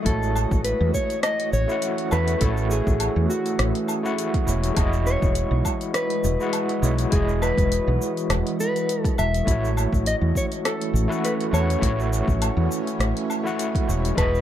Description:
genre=sunset chillout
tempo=102 BPM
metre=4/4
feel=swing 55% on 16ths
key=A lydian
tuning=A4 = 439 Hz
part: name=overdriven tine electric piano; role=accompaniment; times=0.0-14.4 s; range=G#3 to F#5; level=-27 LUFS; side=equal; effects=fast tremolo, auto-pan, digital delay
part: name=shimmering ambient pad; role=sustained chords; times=0.0-14.4 s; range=E3 to D#5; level=-31 LUFS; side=equal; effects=chorus, built-in reverb
part: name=mellow electric guitar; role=melody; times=0.1-14.4 s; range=F#4 to E5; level=-27 LUFS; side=left 1 dB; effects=spring reverb, digital delay
part: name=woody fretless electric bass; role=bass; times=0.1-14.4 s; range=E1 to E2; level=-23 LUFS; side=equal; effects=wide subtle chorus
part: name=deep house drum kit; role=drums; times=0.1-14.4 s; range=hi-hat, rim click, shaker, woodblock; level=-30 LUFS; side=equal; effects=none
part: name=electronic kick drum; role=drums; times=0.1-14.3 s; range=none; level=-24 LUFS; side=equal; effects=none
room=digital ambience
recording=dark, warm production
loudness=-20 LUFS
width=side -11 dB against mid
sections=0.1-14.4 A section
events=none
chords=0.1 A6; 4.5 Emaj9; 9.5 A6; 13.9 Emaj9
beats=| 0.06 0.65 1.24 1.82 | 2.41 3.00 3.59 4.18 | 4.77 5.36 5.94 6.53 | 7.12 7.71 8.30 8.88 | 9.47 10.06 10.65 11.24 | 11.82 12.41 13.00 13.59 | 14.18

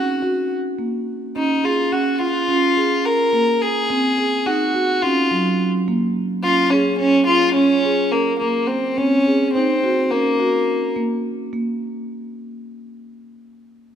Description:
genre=contemporary instrumental, contemporary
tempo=212 BPM (eighths)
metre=9/8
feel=straight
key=Bb minor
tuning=A4 = 440 Hz
part: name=rich violin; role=melody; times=0.0-11.0 s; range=Bb3 to Bb4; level=-18 LUFS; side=left 1 dB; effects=none
part: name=marimba with soft mallets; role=arpeggios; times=0.0-11.8 s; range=Gb3 to Ab4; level=-20 LUFS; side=right 2 dB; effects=none
room=moderate concert hall reverb, RT60 2.3 s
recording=none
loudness=-16 LUFS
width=side -9 dB against mid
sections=0.0-11.5 A section; 11.5-14.0 B section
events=none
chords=0.0 Gb; 1.4 Bbm7; 3.9 Ab7; 5.0 Gbmaj7; 6.4 Bbm7; 9.0 Ab7; 10.1 Gb/Bb; 11.5 N.C.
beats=0.23 0.51 0.79 1.08 | 1.36 1.64 1.92 2.21 2.49 2.77 3.05 3.34 3.62 | 3.90 4.18 4.47 4.75 5.03 5.31 5.60 5.88 6.16 | 6.44 6.73 7.01 7.29 7.57 7.86 8.14 8.42 8.71 | 8.99 9.27 9.55 9.84 10.12 10.40 10.68 10.96 11.25 | 11.53

